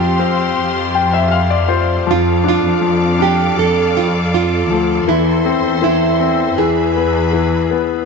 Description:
pop; 80 BPM; 4/4; straight; A4 = 440 Hz
nylon-string guitar; melody; 0.0-7.3 s; E4 to A4; -18 LUFS; right 12 dB
bright concert grand piano; accompaniment; 0.0-8.1 s; E3 to G5; -17 LUFS; left 11 dB
clear symphonic string section; sustained chords; 0.0-8.1 s; G4 to D6; -22 LUFS; left 2 dB
dark studio cello section; bass; 0.0-8.0 s; D2 to F2; -18 LUFS; equal
wet spring reverb, RT60 2.5 s; 1960s-style stereo with parts hard left and right, nothing above 7.9 kHz; -12 LUFS; side -4 dB against mid
0.0-8.1 A section
grand piano fill 0.6-2.1
0.0 Fsus2; 2.1 Dm/F; 5.1 Am/E; 6.6 E
0.57 1.32 | 2.07 2.82 3.57 4.32 | 5.07 5.82 6.57 7.32

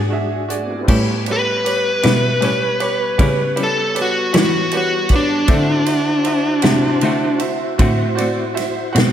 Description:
slow blues; 52 BPM (dotted quarters); 12/8; straight; A4 = 439 Hz
bright upright piano; accompaniment; 0.0-9.1 s; F#4 to F#5; -24 LUFS; right 6 dB; slapback echo
mellow tonewheel organ; sustained chords; 0.0-9.1 s; G3 to D5; -26 LUFS; left 1 dB; chorus vibrato, slow rotary speaker
clear cello; bass; 0.0-9.1 s; G#2 to E3; -21 LUFS; equal
natural country drum kit; drums; 0.5-9.1 s; crash cymbal, hi-hat, kick drum, ride cymbal, snare drum; -21 LUFS; equal
clean electric guitar; accompaniment; 0.9-9.1 s; A2 to F#4; -25 LUFS; left 4 dB; tremolo
smooth overdriven lead guitar; melody; 1.3-7.4 s; D4 to B4; -18 LUFS; left 1 dB
moderate lush hall reverb, RT60 1.9 s, small room ambience; big arena sound; -14 LUFS; side -10 dB against mid
0.9-9.1 A section
lead electric guitar solo 0.9-9.1
0.0 E7; 0.9 A7; 5.5 D7
| 0.89 2.04 3.20 4.35 | 5.50 6.66 7.81 8.96

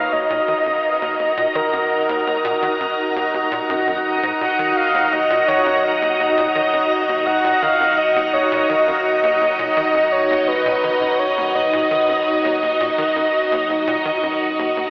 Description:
ambient, sequencer-driven space music; 84 BPM; 4/4; straight; Eb minor; A4 = 443 Hz
breathy flute-like synth lead; melody; 0.0-14.9 s; Bb4 to Gb5; -18 LUFS; equal; chorus, analog delay
string machine, full ensemble; sustained chords; 0.0-14.9 s; Eb4 to Bb5; -20 LUFS; equal; ensemble chorus
tight sequencer bass; riff; 0.0-14.9 s; Eb2 to Eb3; -30 LUFS; equal; lush chorus, analog delay
bubbling stepped-filter texture; texture; 0.0-14.9 s; Eb5; -24 LUFS; right 1 dB; chorus, built-in reverb
wet huge ambient reverb, RT60 7.7 s; dreamy mix soaked in reverb, telephone sound; -15 LUFS; side -25 dB against mid
0.0-14.9 A section
0.0 Ebm
0.48 1.20 | 1.91 2.62 3.34 4.05 | 4.77 5.48 6.20 6.91 | 7.62 8.34 9.05 9.77 | 10.48 11.20 11.91 12.62 | 13.34 14.05 14.77

